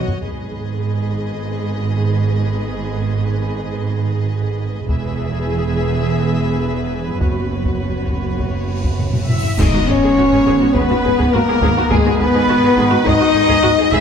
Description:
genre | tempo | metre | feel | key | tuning
cinematic, epic orchestral film score | 103 BPM | 4/4 | straight | G# minor | A4 = 441 Hz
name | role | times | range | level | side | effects
rich chamber violin section | melody | 0.0-14.0 s | G#4 to E5 | -25 LUFS | left 7 dB | none
warm studio violin section | second line | 0.0-14.0 s | G#4 to E5 | -27 LUFS | equal | none
dark symphonic viola section | accompaniment | 0.0-14.0 s | B3 to G#4 | -25 LUFS | right 1 dB | none
rich studio cello section | bass | 0.0-14.0 s | E2 to G#2 | -24 LUFS | right 4 dB | none
warm symphonic double bass section | bass | 0.0-14.0 s | E1 to G#1 | -22 LUFS | right 4 dB | none
taiko ensemble | drums | 0.1-1.4, 4.9-14.0 s | none | -22 LUFS | equal | none
dark French horn section | sustained chords | 0.3-14.0 s | G#3 to G#4 | -20 LUFS | left 3 dB | none
cymbal swell and impact | sound effects | 8.5-11.9 s | none | -31 LUFS | equal | none
mellow trumpet | stabs | 9.3-14.0 s | G#4 to E5 | -23 LUFS | right 2 dB | none
warm trombone section | sustained chords | 9.6-14.0 s | B2 to D#3 | -29 LUFS | right 4 dB | none
clash cymbals and concert bass drum | percussion | 9.6-10.7 s | none | -26 LUFS | equal | none
timpani | percussion | 9.6-10.4 s | G#2 | -26 LUFS | left 1 dB | none
room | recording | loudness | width
wet concert hall reverb, RT60 2.1 s | none | -14 LUFS | side -7 dB against mid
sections
0.2-9.6 A section; 9.6-14.0 B section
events
drum fill 0.0, 9.0-9.6; cymbal swell 8.5-9.6; band accent 9.6-10.2; impact 9.6-11.9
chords
0.2 G#m; 4.9 E; 7.2 F#sus4; 9.6 G#m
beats
| 0.24 0.83 1.41 1.99 | 2.57 3.15 3.73 4.31 | 4.89 5.46 6.04 6.62 | 7.21 7.81 8.40 9.00 | 9.59 10.17 10.75 11.33 | 11.91 12.49 13.06 13.63

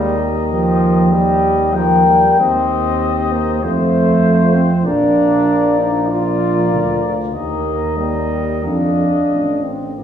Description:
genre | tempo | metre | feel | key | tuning
classical, brass quintet | 87-99 BPM | 4/4 | rubato | Bb major | A4 = 440 Hz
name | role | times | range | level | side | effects
mellow trumpet | melody | 0.0-10.0 s | C5 to G5 | -20 LUFS | left 6 dB | none
mellow flugelhorn | second line | 0.0-10.0 s | G4 to C5 | -23 LUFS | right 4 dB | none
warm French horn | accompaniment | 0.0-10.0 s | F4 to Bb4 | -25 LUFS | left 3 dB | none
warm trombone | accompaniment | 0.0-10.0 s | F3 to F4 | -17 LUFS | right 1 dB | none
mellow tuba | bass | 0.0-10.0 s | A1 to F2 | -19 LUFS | right 1 dB | none
room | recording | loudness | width
wet recital hall reverb, RT60 1.6 s | recorded in a church or concert hall, small room ambience | -13 LUFS | side -8 dB against mid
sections
0.0-10.0 A section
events
none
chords
0.0 Eb; 2.4 Cm/Eb; 3.6 F; 4.9 Bb; 7.3 Eb; 8.6 F7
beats
0.51 1.13 1.75 | 2.40 3.02 3.63 4.24 | 4.85 5.47 6.10 6.72 | 7.34 7.97 8.64 9.30 | 9.97

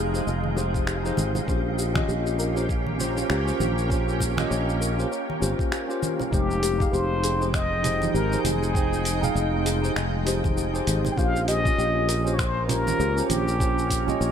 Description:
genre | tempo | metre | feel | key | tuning
sunset chillout | 99 BPM | 4/4 | swing 57% on 16ths | Bb dorian | A4 = 440 Hz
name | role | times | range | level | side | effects
bright tine electric piano | accompaniment | 0.0-14.3 s | Ab3 to G5 | -29 LUFS | moving between left 6 dB and right 5 dB | medium stereo tremolo, auto-pan, tape echo
shimmering ambient pad | sustained chords | 0.0-14.3 s | F3 to G5 | -31 LUFS | right 1 dB | chorus, built-in reverb
soft round pluck | arpeggios | 0.0-14.3 s | G4 to Eb5 | -34 LUFS | left 4 dB | wide subtle chorus, tape echo
sustaining fretless electric bass | bass | 0.0-14.3 s | F1 to Db2 | -26 LUFS | equal | none
wind-like tuned noise texture | texture | 0.0-6.3 s | F5 | -38 LUFS | equal | built-in reverb
dusty soul sampler-style drum kit | drums | 0.1-14.3 s | cabasa, finger snaps, hi-hat | -32 LUFS | equal | none
congas and bongos | percussion | 0.4-14.2 s | none | -32 LUFS | right 3 dB | none
electronic kick drum | drums | 0.7-14.0 s | none | -26 LUFS | equal | none
trumpet with plunger mute | melody | 6.3-14.3 s | G4 to G5 | -28 LUFS | left 1 dB | tape echo
room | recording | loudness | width
light reverb | none | -22 LUFS | side -8 dB against mid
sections
0.0-6.3 A section; 6.3-14.3 B section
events
none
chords
0.0 Fm9; 1.5 Bbm69; 6.3 Fm9; 11.2 Bbm69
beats
0.27 0.87 | 1.48 2.08 2.69 3.30 | 3.90 4.51 5.12 5.72 | 6.33 6.93 7.54 8.15 | 8.75 9.36 9.96 10.57 | 11.18 11.78 12.39 12.99 | 13.60 14.21

